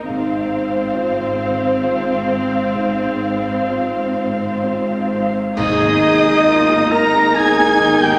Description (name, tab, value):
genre	cinematic, emotional film score for orchestra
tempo	62-70 BPM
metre	3/4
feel	rubato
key	Ab major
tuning	A4 = 440 Hz
part	rich chamber violin section	melody	0.0-8.2 s	F5 to Bb6	-25 LUFS	equal	none
part	rich symphonic violin section	second line	0.0-8.2 s	C5 to Bb5	-24 LUFS	equal	none
part	rich symphonic viola section	accompaniment	0.0-8.2 s	Bb3 to Eb4	-25 LUFS	equal	none
part	warm grand piano	accompaniment	0.0-8.2 s	Ab2 to C5	-25 LUFS	equal	none
part	rich studio cello section	bass	0.0-8.2 s	Ab2 to Ab4	-26 LUFS	equal	none
part	rich symphonic double bass section	bass	0.0-8.2 s	Ab1	-32 LUFS	equal	none
part	cymbal swell, clash cymbals and concert bass drum	percussion	2.7-7.3 s	none	-33 LUFS	equal	none
part	concert flute	second line	5.6-8.2 s	Eb5 to Bb5	-27 LUFS	equal	none
part	mellow clarinet	second line	5.6-8.2 s	Eb4 to Bb4	-25 LUFS	equal	none
part	warm oboe	second line	5.6-8.2 s	Eb5 to Bb5	-21 LUFS	equal	none
part	mellow French horn section	sustained chords	5.6-8.2 s	Eb4 to Bb4	-25 LUFS	equal	none
room	wet concert hall reverb, RT60 2.2 s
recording	none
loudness	-17 LUFS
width	mono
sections	0.0-5.6 A section; 5.6-8.2 B section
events	band accent 5.6-6.5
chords	0.1 Fm/Ab; 5.6 Absus2